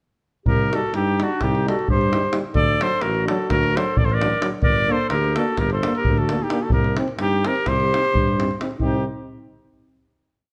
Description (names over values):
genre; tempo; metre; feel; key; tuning
balkan folk, Balkan brass band; 259 BPM (eighths); 9/8; straight; C dorian sharp4; A4 = 444 Hz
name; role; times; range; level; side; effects
warm trumpet; melody; 0.5-9.1 s; F#4 to D5; -25 LUFS; equal; none
warm clarinet; second line; 0.5-9.1 s; D4 to Bb4; -30 LUFS; equal; none
mellow tuba; bass; 0.5-9.0 s; G1 to G2; -27 LUFS; equal; none
davul; percussion; 0.5-9.0 s; none; -26 LUFS; equal; none
mellow French horn; accompaniment; 0.7-9.0 s; D4 to Eb4; -35 LUFS; equal; none
warm euphonium; accompaniment; 0.7-9.1 s; F#3 to C4; -32 LUFS; equal; none
room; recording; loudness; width
moderate recital hall reverb, RT60 1.4 s; none; -21 LUFS; mono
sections
0.5-8.8 A section; 8.8-10.5 final chord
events
none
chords
0.5 Cm; 2.5 D; 4.6 Gm; 6.7 Cm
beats
| 0.46 0.69 0.92 1.16 1.39 1.62 1.85 2.08 2.31 | 2.54 2.77 3.01 3.24 3.47 3.70 3.93 4.16 4.39 | 4.62 4.85 5.08 5.32 5.55 5.78 6.01 6.24 6.47 | 6.71 6.94 7.17 7.40 7.63 7.87 8.10 8.33 8.57 | 8.80 9.03